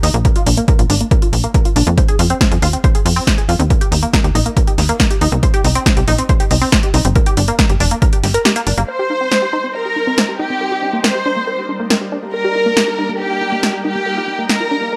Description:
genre	uplifting trance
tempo	139 BPM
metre	4/4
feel	straight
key	C minor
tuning	A4 = 440 Hz
part	tight sequenced synth	arpeggios	0.0-15.0 s	Bb3 to C5	-23 LUFS	equal	chorus, cassette tape, sidechain pumping, tape echo
part	tight sequencer bass	bass	0.0-8.8 s	F1 to F2	-18 LUFS	equal	sidechain pumping
part	punchy analog drum machine	drums	0.0-14.6 s	hi-hat, snare drum	-20 LUFS	equal	none
part	electronic kick drum	drums	0.2-8.1 s	none	-17 LUFS	equal	none
part	rich studio violin section	second line	8.9-15.0 s	G4 to C5	-20 LUFS	equal	tape echo
room	light reverb, digital ambience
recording	none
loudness	-15 LUFS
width	mono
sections	0.0-8.9 A section; 8.9-15.0 B section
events	kick drops out 8.5-8.9; filter sweep on synth arpeggio sound 8.9-15.0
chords	0.2 Bb5; 2.0 F5; 3.7 Eb5; 5.4 C5; 7.2 Gm; 8.9 Cm; 10.6 Gm; 12.3 Eb; 14.1 Bb

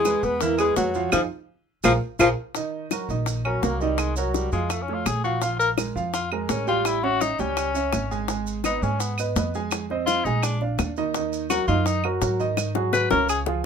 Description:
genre	Afro-Cuban jazz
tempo	168 BPM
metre	4/4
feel	straight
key	Eb minor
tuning	A4 = 440 Hz
part	breathy alto saxophone	melody	0.0-2.3 s	F4 to B4	-22 LUFS	left 2 dB	none
part	warm tenor saxophone	second line	0.0-13.4 s	F3 to Cb5	-25 LUFS	left 5 dB	none
part	upright bass	bass	0.0-13.6 s	Ab1 to Ab2	-28 LUFS	equal	none
part	warm concert grand piano	accompaniment	0.1-13.7 s	Db3 to Ab5	-27 LUFS	right 5 dB	none
part	bongos	percussion	0.1-13.6 s	none	-29 LUFS	left 8 dB	none
part	claves	percussion	0.1-13.5 s	none	-31 LUFS	right 6 dB	none
part	maracas	percussion	0.1-13.5 s	none	-36 LUFS	right 6 dB	none
room	light reverb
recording	minimal, uncompressed stereo recording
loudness	-21 LUFS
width	side -7 dB against mid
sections	0.0-2.6 A section; 2.6-13.7 B section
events	band accent 1.1-2.6; tenor saxophone solo 2.6-13.7; drum fill 12.6-13.7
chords	0.0 Eadd9; 1.1 Fm7; 1.8 Bb5; 2.6 Ebm; 4.0 Cm7b5; 4.7 Faug; 5.4 Bb5; 6.9 A7; 8.3 Abm; 9.7 Fm7; 10.4 Bb7; 11.1 Ebmadd11; 12.6 Ab5

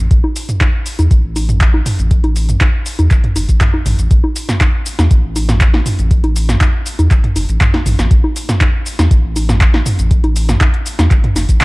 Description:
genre	acid house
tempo	120 BPM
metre	4/4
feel	straight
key	unclear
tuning	A4 = 439 Hz
part	saturated sub bass	bass	0.0-11.6 s	G1 to E2	-14 LUFS	equal	sidechain pumping
part	electro analog drum machine	drums	0.1-11.6 s	congas, handclaps, hi-hat, shaker, snare drum, toms	-17 LUFS	equal	none
part	electronic kick drum	drums	0.1-11.6 s	none	-12 LUFS	equal	overdrive
room	digital ambience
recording	dark, warm production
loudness	-11 LUFS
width	side -23 dB against mid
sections	0.0-11.6 A section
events	none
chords	none

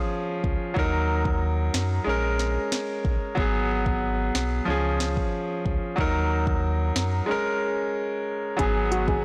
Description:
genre	dancehall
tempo	92 BPM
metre	4/4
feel	straight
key	G# dorian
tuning	A4 = 440 Hz
part	bright concert grand piano	accompaniment	0.0-9.2 s	E#3 to A#4	-28 LUFS	equal	none
part	sub bass with octave	bass	0.4-9.2 s	G#1 to F#2	-29 LUFS	equal	none
part	afro-pop drum kit	drums	0.4-9.2 s	finger snaps, hi-hat, kick drum, snare drum	-31 LUFS	equal	none
part	steel pan	melody	8.6-9.2 s	F#4 to G#4	-29 LUFS	equal	none
part	granular cloud pad	sustained chords	9.1-9.2 s	G#3	-42 LUFS	equal	none
part	bongos	percussion	8.6-9.2 s	none	-37 LUFS	equal	none
room	little or no reverb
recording	blown-out, overdriven recording, overdrive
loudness	-25 LUFS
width	mono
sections	0.0-8.6 A section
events	break 7.3-8.6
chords	0.0 C#; 0.8 D#m; 2.1 A#m7; 3.4 G#m7; 4.7 C#; 6.0 D#m; 7.3 A#m7; 8.6 G#m7

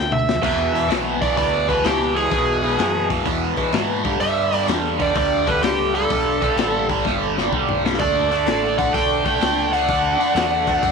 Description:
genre	blues rock power trio and southern rock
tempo	127 BPM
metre	4/4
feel	swing 67% on 8ths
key	unclear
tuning	A4 = 437 Hz
part	bluesy overdriven lead guitar	melody	0.0-10.9 s	G4 to G5	-21 LUFS	right 2 dB	distortion, slapback echo
part	growling fingered electric bass	bass	0.0-10.9 s	G1 to G#2	-29 LUFS	equal	overdrive
part	raw garage drum kit	drums	0.1-10.9 s	crash cymbal, hi-hat, kick drum, snare drum, toms	-26 LUFS	left 5 dB	none
part	overdriven electric guitar	riff	0.4-10.9 s	E2 to D4	-20 LUFS	right 1 dB	phaser
part	bluesy overdriven lead guitar	second line	8.0-10.9 s	A4 to D5	-29 LUFS	right 11 dB	distortion
room	light reverb, small room reverb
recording	1960s-style stereo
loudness	-17 LUFS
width	side -5 dB against mid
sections	0.4-10.9 A section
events	drum fill 0.0-0.4, 7.1-8.0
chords	0.4 E; 4.0 G; 8.0 D

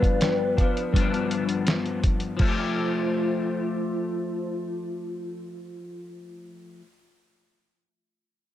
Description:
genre	indie pop, bedroom pop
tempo	82 BPM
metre	4/4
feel	straight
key	F lydian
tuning	A4 = 441 Hz
part	hollow clarinet-like synth lead	melody	0.0-6.1 s	F4 to B4	-30 LUFS	right 1 dB	lush chorus, slapback echo
part	vibraphone with soft mallets	second line	0.0-4.6 s	C5 to G5	-37 LUFS	right 4 dB	wide subtle chorus, slapback echo
part	electric guitar at the edge of break-up	accompaniment	0.0-6.9 s	G2 to G4	-28 LUFS	left 4 dB	ensemble chorus, vibrato effect
part	lo-fi sampler-style drum kit	drums	0.0-2.6 s	crash cymbal, hi-hat, kick drum, snare drum	-24 LUFS	equal	none
room	moderate spring reverb, RT60 2.5 s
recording	dark, warm production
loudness	-23 LUFS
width	side -12 dB against mid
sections	0.0-2.4 A section; 2.4-5.3 B section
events	none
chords	0.0 G7; 2.4 Fadd9

